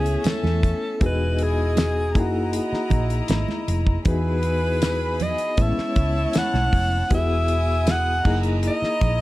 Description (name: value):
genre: lush 1970s-style soul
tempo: 79 BPM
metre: 4/4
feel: straight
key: E major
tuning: A4 = 440 Hz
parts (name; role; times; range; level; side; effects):
- clear alto saxophone; melody; 0.0-9.2 s; F#4 to F#5; -25 LUFS; equal; none
- clear studio string section; second line; 0.0-9.2 s; A3 to D#6; -31 LUFS; equal; none
- overdriven reed electric piano; accompaniment; 0.0-9.2 s; G#3 to G#5; -28 LUFS; left 3 dB; fast tremolo
- hollow-body short-scale fingered electric bass; bass; 0.0-9.2 s; E1 to E2; -23 LUFS; equal; none
- damped 70s drum kit; drums; 0.1-9.2 s; crash cymbal, hi-hat, kick drum, snare drum; -23 LUFS; equal; none
- congas; percussion; 0.3-9.2 s; none; -31 LUFS; right 6 dB; none
- tambourine; percussion; 0.3-8.0 s; none; -41 LUFS; left 6 dB; none
room: small room ambience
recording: dark, warm production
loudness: -19 LUFS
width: side -17 dB against mid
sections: 0.0-9.2 A section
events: none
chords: 0.0 Amaj7; 1.0 Emaj7; 2.1 F#13; 4.1 Emaj7; 5.6 Amaj7; 7.1 Emaj7; 8.2 F#13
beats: 0.25 | 1.01 1.77 2.53 3.29 | 4.05 4.82 5.58 6.34 | 7.10 7.87 8.63